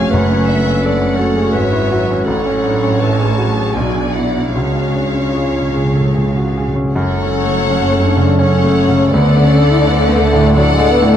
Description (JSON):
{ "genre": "classical, romantic movement for piano and orchestra", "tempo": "73-88 BPM", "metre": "3/4", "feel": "rubato", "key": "F# minor", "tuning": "A4 = 436 Hz", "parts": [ { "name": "clear concert grand piano", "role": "melody", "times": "0.0-11.2 s", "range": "A1 to A4", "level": "-16 LUFS", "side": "left 1 dB", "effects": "none" }, { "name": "rich studio violin section", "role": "melody", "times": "0.0-11.2 s", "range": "E5 to A5", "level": "-24 LUFS", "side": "left 2 dB", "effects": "none" }, { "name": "dark clarinet", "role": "second line", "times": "0.0-6.1 s", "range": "E#4 to C#5", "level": "-21 LUFS", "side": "left 1 dB", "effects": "none" }, { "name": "warm studio violin section", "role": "second line", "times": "0.0-11.2 s", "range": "C#5 to E#5", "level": "-22 LUFS", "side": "left 3 dB", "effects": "none" }, { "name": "dark studio viola section", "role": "accompaniment", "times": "0.0-11.2 s", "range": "E3 to A4", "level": "-23 LUFS", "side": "right 2 dB", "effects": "none" }, { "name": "clear studio double bass section", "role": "bass", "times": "0.0-11.2 s", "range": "F#1 to D2", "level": "-19 LUFS", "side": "right 3 dB", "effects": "none" }, { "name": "rich studio cello section", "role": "bass", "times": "0.0-11.2 s", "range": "F#2 to D3", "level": "-21 LUFS", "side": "right 3 dB", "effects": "none" }, { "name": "timpani", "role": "percussion", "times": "0.1-1.1, 4.6-6.9 s", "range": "F#2 to C#3", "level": "-21 LUFS", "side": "equal", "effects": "none" }, { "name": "mellow French horn section", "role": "sustained chords", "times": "6.9-11.2 s", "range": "F#3 to E4", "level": "-16 LUFS", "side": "left 3 dB", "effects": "none" } ], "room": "wet recital hall reverb, RT60 1.7 s", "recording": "dark, warm production", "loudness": "-12 LUFS", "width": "side -10 dB against mid", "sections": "0.0-6.9 A section; 6.9-11.2 B section", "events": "timpani fill 4.5-6.9", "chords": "0.1 F#m; 2.3 F#m/A; 3.8 G#m7b5/B; 4.5 C#; 6.9 F#m; 9.1 D" }